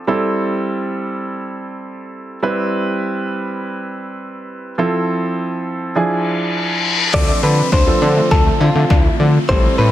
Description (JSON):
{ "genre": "dance-pop", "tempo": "102 BPM", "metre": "4/4", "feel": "straight", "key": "unclear", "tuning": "A4 = 441 Hz", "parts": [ { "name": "warm grand piano", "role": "accompaniment", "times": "0.0-9.9 s", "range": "F3 to B4", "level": "-19 LUFS", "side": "right 2 dB", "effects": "sidechain pumping" }, { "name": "reverse cymbal, riser and downlifter", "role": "sound effects", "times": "6.2-9.9 s", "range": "none", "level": "-22 LUFS", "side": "left 4 dB", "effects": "none" }, { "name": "direct-recorded clean electric guitar", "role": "melody", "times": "7.1-9.9 s", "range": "F4 to D5", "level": "-18 LUFS", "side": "left 1 dB", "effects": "spring reverb, tape echo" }, { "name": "airy breathy pad", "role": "sustained chords", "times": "7.1-9.9 s", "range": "D3 to G4", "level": "-24 LUFS", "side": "equal", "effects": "chorus, sidechain pumping" }, { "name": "wide unison pluck", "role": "arpeggios", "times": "7.1-9.7 s", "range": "F3 to F4", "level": "-26 LUFS", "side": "left 2 dB", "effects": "none" }, { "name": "fat analog bass", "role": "bass", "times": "7.1-9.9 s", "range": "A1 to D3", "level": "-15 LUFS", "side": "left 1 dB", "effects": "sidechain pumping" }, { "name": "punchy analog drum machine", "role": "drums", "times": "7.1-9.6 s", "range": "crash cymbal, kick drum, snare drum", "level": "-16 LUFS", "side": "left 1 dB", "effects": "none" } ], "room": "light reverb", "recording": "none", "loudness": "-14 LUFS", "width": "side -13 dB against mid", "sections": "0.0-7.1 A section; 7.1-9.9 B section", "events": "reverse cymbal 6.2-7.1; build-up 7.1-9.9; drum fill 7.1-9.9; riser 7.1-9.9", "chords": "0.1 Am7; 2.4 Cmaj7/G; 4.8 Fmaj7; 6.0 E7b9; 7.1 Dm7" }